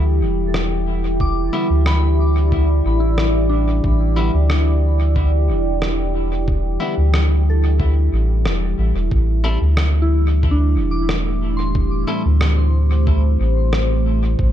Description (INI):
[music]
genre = ambient dub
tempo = 91 BPM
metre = 4/4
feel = straight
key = unclear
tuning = A4 = 440 Hz
[part]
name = deep dark ambient pad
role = sustained chords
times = 0.0-14.5 s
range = A3 to D5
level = -22 LUFS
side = equal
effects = chorus, built-in reverb
[part]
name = soft synth bell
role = arpeggios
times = 0.0-14.5 s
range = D4 to D6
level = -28 LUFS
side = left 1 dB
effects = chorus, phaser, dub echo
[part]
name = soft dub sub bass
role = bass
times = 0.0-14.5 s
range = E1 to D2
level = -16 LUFS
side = equal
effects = none
[part]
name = electronic rim click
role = drums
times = 0.5-13.9 s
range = none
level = -26 LUFS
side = equal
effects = dub echo
[part]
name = electronic kick drum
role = drums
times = 1.2-14.5 s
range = none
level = -21 LUFS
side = equal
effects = none
[part]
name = clean electric guitar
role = stabs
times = 1.5-12.2 s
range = D3 to A4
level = -31 LUFS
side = left 2 dB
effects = dub echo
[sound]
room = little or no reverb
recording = echo-heavy mix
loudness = -15 LUFS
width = side -11 dB against mid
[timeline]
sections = 0.0-14.5 A section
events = none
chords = 0.0 Em7; 9.1 Am7